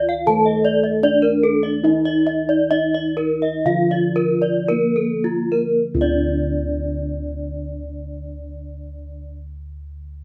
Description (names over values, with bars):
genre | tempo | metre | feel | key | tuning
Balinese gamelan | 51-84 BPM | 4/4 | straight | D pelog | A4 = 438 Hz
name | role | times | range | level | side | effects
gamelan-type bronze metallophone | melody | 0.0-9.4 s | Bb3 to A4 | -24 LUFS | equal | none
gamelan-type bronze metallophone | accompaniment | 0.0-9.3 s | D3 to A3 | -30 LUFS | equal | none
gamelan-type bronze metallophone | arpeggios | 0.0-9.3 s | F4 to A5 | -24 LUFS | equal | none
gamelan-type bronze metallophone | arpeggios | 0.1-9.3 s | A4 to F5 | -26 LUFS | equal | none
gamelan-type bossed gongs | bass | 0.3-9.3 s | D2 to Eb4+35c | -29 LUFS | equal | none
room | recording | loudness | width
moderate studio reverb, RT60 0.5 s | band playing live in one room | -19 LUFS | mono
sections
0.0-5.8 A section; 5.8-10.2 B section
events
slowing down 0.0-5.8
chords
none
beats
0.27 1.03 | 1.84 2.72 3.66 4.69 | 5.82 7.01 8.19